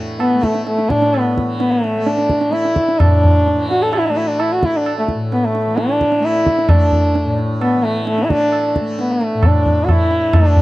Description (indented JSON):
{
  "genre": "indian classical, Hindustani",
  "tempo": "130 BPM",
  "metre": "4/4",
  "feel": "straight",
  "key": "unclear",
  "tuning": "A4 = 441 Hz",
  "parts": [
    { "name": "tanpura", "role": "drone", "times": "0.0-10.6 s", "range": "A2 to A3", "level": "-23 LUFS", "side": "left 1 dB", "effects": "none" },
    { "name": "dark sarangi", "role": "melody", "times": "0.2-10.6 s", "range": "A3 to A4", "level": "-16 LUFS", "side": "equal", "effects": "none" },
    { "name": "tabla", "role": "percussion", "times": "0.2-10.6 s", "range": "none", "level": "-16 LUFS", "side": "right 1 dB", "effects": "none" }
  ],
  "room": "little or no reverb",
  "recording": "dry, close 1970s-style studio recording",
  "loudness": "-13 LUFS",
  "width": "side -18 dB against mid",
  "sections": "0.0-10.6 A section",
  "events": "speeding up 0.0-10.6",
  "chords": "none",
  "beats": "0.20 0.66 | 1.13 1.60 2.07 2.53 | 3.00 3.46 3.93 4.39 | 4.85 5.31 5.78 6.24 | 6.70 7.15 7.61 8.07 | 8.53 8.98 9.44 9.89 | 10.35"
}